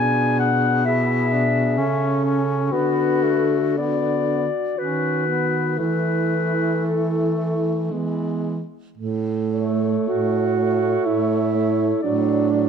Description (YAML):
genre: classical, lyrical piece for single-reed quartet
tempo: 58 BPM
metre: 3/4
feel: uneven beats, rubato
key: A major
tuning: A4 = 439 Hz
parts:
  - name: mellow clarinet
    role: melody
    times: 0.0-12.7 s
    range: F#4 to G#5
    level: -24 LUFS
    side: left 6 dB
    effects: none
  - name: mellow alto saxophone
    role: second line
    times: 0.0-12.7 s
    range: A3 to B4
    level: -24 LUFS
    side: right 6 dB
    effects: none
  - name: mellow tenor saxophone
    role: accompaniment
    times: 0.0-12.7 s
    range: F#3 to E4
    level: -27 LUFS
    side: left 4 dB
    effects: none
  - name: warm baritone saxophone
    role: bass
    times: 0.0-12.7 s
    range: A2 to E3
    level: -23 LUFS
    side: right 1 dB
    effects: none
room: light reverb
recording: dark, warm production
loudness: -18 LUFS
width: side -7 dB against mid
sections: 0.0-9.0 A section; 9.0-12.7 A section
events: none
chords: 0.0 G#dim/B; 1.8 A/C#; 2.7 Bm/D; 4.8 B/D#; 5.8 A5/E; 7.9 E; 9.0 A; 12.0 D/A